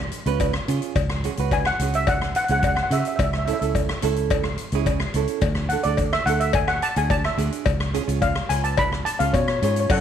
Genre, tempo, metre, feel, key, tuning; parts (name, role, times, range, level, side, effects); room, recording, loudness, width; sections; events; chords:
calypso; 107 BPM; 4/4; straight; A4 = 438 Hz
fingered electric bass; bass; 0.0-10.0 s; C#2 to C#3; -25 LUFS; equal
street-band drum kit; drums; 0.1-10.0 s; crash cymbal, hi-hat, kick drum, rim click; -26 LUFS; equal
nylon-string guitar; accompaniment; 0.3-9.9 s; C#4 to B4; -28 LUFS; right 15 dB
cowbell; percussion; 0.4-10.0 s; -27 LUFS; left 11 dB
steel pan; melody; 1.5-10.0 s; A4 to B5; -23 LUFS; left 1 dB
light reverb, small room ambience; 1960s-style stereo with parts hard left and right; -20 LUFS; side -9 dB against mid
0.0-9.9 A section
steel pan solo 0.0-9.9
0.0 C#; 1.0 C#sus4; 3.2 A/C#; 5.4 D; 7.7 C#